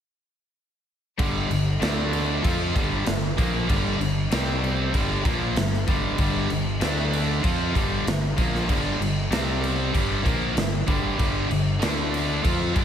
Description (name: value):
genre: hard rock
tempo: 96 BPM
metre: 4/4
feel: straight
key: unclear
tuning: A4 = 439 Hz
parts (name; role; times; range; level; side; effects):
- cranked stack guitar; riff; 1.2-12.8 s; G2 to F4; -27 LUFS; left 8 dB; overdrive
- distorted electric guitar; riff; 1.2-12.8 s; G2 to F4; -27 LUFS; right 8 dB; overdrive
- fuzz fingered electric bass; bass; 1.2-12.8 s; G1 to F2; -28 LUFS; equal; overdrive
- big rock drum kit; drums; 1.2-12.8 s; crash cymbal, kick drum, snare drum; -26 LUFS; equal; none
room: moderate lush hall reverb, RT60 1.9 s, small room ambience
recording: big arena sound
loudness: -21 LUFS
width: side -9 dB against mid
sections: 1.2-12.8 A section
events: none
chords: 1.2 G5; 1.8 D5; 2.4 G5; 4.3 C5; 4.9 G5; 6.8 D5; 7.4 G5; 9.3 C5; 9.9 G5; 11.8 D5